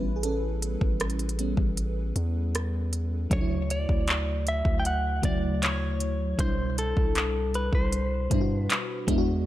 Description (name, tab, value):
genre	contemporary R&B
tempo	78 BPM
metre	4/4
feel	straight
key	D major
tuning	A4 = 440 Hz
part	FM electric piano with soft pad layer	accompaniment	0.0-9.5 s	B2 to B4	-32 LUFS	equal	chorus, tremolo
part	long sustained 808-style bass	bass	0.0-9.5 s	A1 to G2	-29 LUFS	equal	none
part	organic electronic drum kit	drums	0.2-9.3 s	handclaps, hi-hat, kick drum, rim click	-28 LUFS	equal	none
part	direct-recorded clean electric guitar	melody	3.3-9.0 s	A4 to G5	-31 LUFS	left 1 dB	spring reverb, ping-pong delay
room	little or no reverb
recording	none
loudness	-24 LUFS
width	side -14 dB against mid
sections	0.0-3.3 A section; 3.3-9.5 B section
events	FM electric piano solo 0.0-3.3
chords	0.0 A7; 3.3 Dmaj7; 6.4 Cmaj7